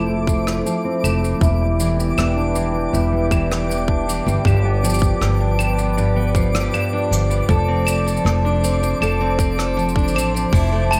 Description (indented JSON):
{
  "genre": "folktronica",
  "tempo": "79 BPM",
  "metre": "4/4",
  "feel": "straight",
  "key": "unclear",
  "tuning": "A4 = 439 Hz",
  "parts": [
    { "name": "warbly tape-like pad", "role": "sustained chords", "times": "0.0-11.0 s", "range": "F3 to A5", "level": "-28 LUFS", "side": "equal", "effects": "chorus, built-in reverb, vintage 12-bit sampler grit" },
    { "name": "picked steel-string acoustic guitar", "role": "arpeggios", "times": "0.0-11.0 s", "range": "E2 to A4", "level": "-24 LUFS", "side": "equal", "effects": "vintage 12-bit sampler grit, low-pass filter, delay" },
    { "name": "upright bass", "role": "bass", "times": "0.0-11.0 s", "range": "E1 to A1", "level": "-23 LUFS", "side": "equal", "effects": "none" },
    { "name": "twinkling granular texture", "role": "texture", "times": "0.0-11.0 s", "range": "D6", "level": "-32 LUFS", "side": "equal", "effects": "built-in reverb" },
    { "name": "electronic kick drum", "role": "drums", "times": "0.3-10.7 s", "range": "none", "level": "-22 LUFS", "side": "equal", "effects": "none" },
    { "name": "jazz brush drum kit", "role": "drums", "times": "0.3-11.0 s", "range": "claves, hi-hat, rim click, shaker", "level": "-30 LUFS", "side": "equal", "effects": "none" },
    { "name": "glockenspiel with soft plastic mallets", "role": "second line", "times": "10.9-11.0 s", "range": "A5", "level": "-20 LUFS", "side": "equal", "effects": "none" }
  ],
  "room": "light reverb",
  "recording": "none",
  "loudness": "-19 LUFS",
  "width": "mono",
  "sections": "0.0-11.0 A section",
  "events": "filter sweep on steel-string acoustic guitar 0.0-11.0",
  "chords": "0.0 Fmaj7; 1.4 Em7; 4.5 G7; 7.5 Dm7/F"
}